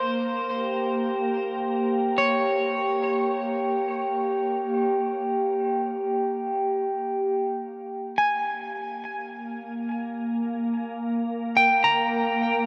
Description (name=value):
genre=ambient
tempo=free time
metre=none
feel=none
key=Bb dorian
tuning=A4 = 441 Hz
part: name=clean electric guitar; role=arpeggios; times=0.0-12.7 s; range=C5 to Bb5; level=-27 LUFS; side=equal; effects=tape echo
part: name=organ-like drone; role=drone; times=0.0-12.7 s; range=Bb3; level=-32 LUFS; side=equal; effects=ensemble chorus, built-in reverb
part: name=glass harmonica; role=texture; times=0.5-7.3 s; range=G4 to G5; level=-28 LUFS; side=equal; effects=none
room=wet huge ambient reverb, RT60 7.5 s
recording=dark, warm production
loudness=-26 LUFS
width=mono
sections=0.0-7.3 A section; 7.3-12.7 B section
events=fade-out on synth drone 0.0-7.3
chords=0.5 Bbm6; 7.3 N.C.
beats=free time